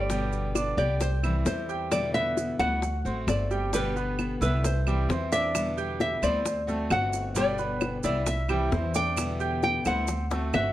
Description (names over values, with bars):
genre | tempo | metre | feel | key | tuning
latin, Cuban son and guajira | 132 BPM | 4/4 | straight | G major | A4 = 440 Hz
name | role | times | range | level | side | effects
nylon-string guitar | melody | 0.0-10.7 s | B4 to G5 | -29 LUFS | left 1 dB | none
picked steel-string acoustic guitar | accompaniment | 0.0-10.7 s | B2 to G4 | -33 LUFS | left 2 dB | none
bright grand piano | arpeggios | 0.0-10.7 s | G3 to G6 | -33 LUFS | right 4 dB | none
upright bass | bass | 0.0-10.7 s | G1 to E2 | -30 LUFS | equal | none
bongos | percussion | 0.1-10.6 s | none | -34 LUFS | left 3 dB | none
maracas | percussion | 0.1-10.7 s | none | -41 LUFS | right 8 dB | none
claves | percussion | 0.6-10.7 s | none | -37 LUFS | right 6 dB | none
room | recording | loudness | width
moderate large studio reverb, RT60 0.9 s | none | -24 LUFS | side -14 dB against mid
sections
0.0-3.7 A section; 3.7-10.7 B section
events
drum fill 10.3-10.7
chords
0.1 G; 1.0 C; 1.9 Em7; 2.8 D7; 3.7 G; 4.6 C; 5.5 Em7; 6.5 D7; 7.4 G; 8.3 C; 9.2 Em7; 10.1 D7